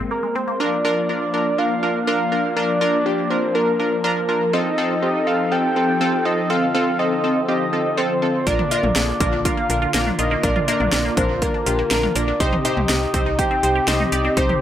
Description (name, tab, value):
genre	synth-pop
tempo	122 BPM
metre	4/4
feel	straight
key	unclear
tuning	A4 = 440 Hz
part	brassy analog pad	sustained chords	0.0-14.6 s	C3 to A4	-25 LUFS	left 1 dB	chorus
part	resonant blip pluck	arpeggios	0.0-0.6, 8.5-14.6 s	Ab3 to G4	-28 LUFS	left 1 dB	phaser, analog delay
part	slap-like FM bass	bass	0.0, 8.5-14.5 s	Bb1 to C2	-25 LUFS	equal	none
part	soft octave-layered synth lead	melody	0.1-14.6 s	Bb4 to G5	-22 LUFS	equal	chorus, analog delay
part	funky polysynth comp	accompaniment	0.6-14.5 s	C4 to Eb5	-22 LUFS	equal	chorus, analog delay
part	house drum kit	drums	8.5-14.6 s	cowbell, hi-hat, kick drum, snare drum, toms	-22 LUFS	equal	overdrive
room	moderate spring reverb, RT60 1.8 s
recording	echo-heavy mix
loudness	-17 LUFS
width	side -10 dB against mid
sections	0.6-14.6 A section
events	silent gap 0.1-0.6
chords	0.0 Abadd9; 0.6 Bb; 4.5 F7; 8.5 Bb; 12.4 Cm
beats	0.11 | 0.60 1.09 1.58 2.07 | 2.57 3.06 3.55 4.04 | 4.53 5.03 5.52 6.01 | 6.50 6.99 7.48 7.98 | 8.47 8.96 9.45 9.94 | 10.44 10.93 11.42 11.91 | 12.40 12.89 13.39 13.88 | 14.37